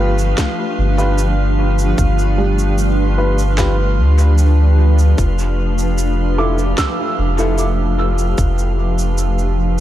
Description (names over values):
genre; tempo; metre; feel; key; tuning
ambient dub; 75 BPM; 4/4; straight; G mixolydian; A4 = 440 Hz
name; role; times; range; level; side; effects
granular cloud pad; sustained chords; 0.0-9.8 s; F3 to B4; -21 LUFS; equal; built-in reverb, vintage 12-bit sampler grit
dark upright piano; stabs; 0.0-7.6 s; E4 to B4; -25 LUFS; left 2 dB; dub echo
soft dub sub bass; bass; 0.0-9.8 s; F1 to D2; -15 LUFS; equal; none
drifting glass-harmonics texture; texture; 0.0-9.8 s; F4 to F5; -26 LUFS; right 2 dB; chorus, built-in reverb
electronic cabasa and snare drum; drums; 0.2-9.5 s; none; -27 LUFS; right 1 dB; dub echo
electronic kick drum; drums; 0.4-8.5 s; none; -18 LUFS; equal; none
felt-muted upright piano; arpeggios; 2.4-9.8 s; G3 to E6; -26 LUFS; right 3 dB; tape echo
room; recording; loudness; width
digital ambience; none; -13 LUFS; side -13 dB against mid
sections
0.0-9.8 A section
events
none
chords
0.0 G7; 5.2 Fmaj7